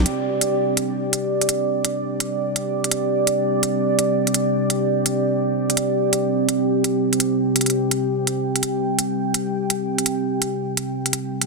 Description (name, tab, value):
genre	half-time drum and bass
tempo	168 BPM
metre	4/4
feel	swing 59% on 16ths, half-time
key	unclear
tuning	A4 = 440 Hz
part	deep dark ambient pad	sustained chords	0.0-11.5 s	C4 to G5	-20 LUFS	right 1 dB	chorus, built-in reverb
part	electronic hi-hat	drums	0.1-11.5 s	none	-22 LUFS	right 1 dB	none
room	moderate huge ambient reverb, RT60 4.3 s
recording	dense, heavily limited modern master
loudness	-19 LUFS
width	side -2 dB against mid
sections	0.1-11.5 A section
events	none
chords	0.1 C5